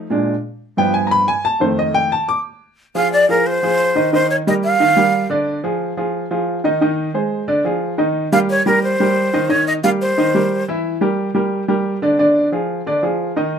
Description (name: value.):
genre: jazz.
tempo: 179 BPM.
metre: 4/4.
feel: straight.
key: unclear.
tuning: A4 = 441 Hz.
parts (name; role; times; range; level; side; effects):
clear baby grand piano; accompaniment; 0.0-13.6 s; F2 to D6; -16 LUFS; equal; none.
breathy jazz flute; melody; 3.0-5.3, 8.3-10.6 s; Bb4 to F5; -15 LUFS; right 1 dB; none.
room: moderate club reverb, RT60 0.6 s.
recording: minimal, uncompressed stereo recording.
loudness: -15 LUFS.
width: side -7 dB against mid.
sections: 0.0-2.8 A section; 2.8-13.6 B section.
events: grand piano solo 0.0-2.8.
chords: 0.1 Bb7; 0.8 G7; 1.4 F7; 2.8 Ab6; 4.1 Ebadd9; 5.5 Ddim; 6.8 Ab/Eb; 7.5 Ddim; 8.2 Eb6; 10.8 Edim; 12.2 Ddim.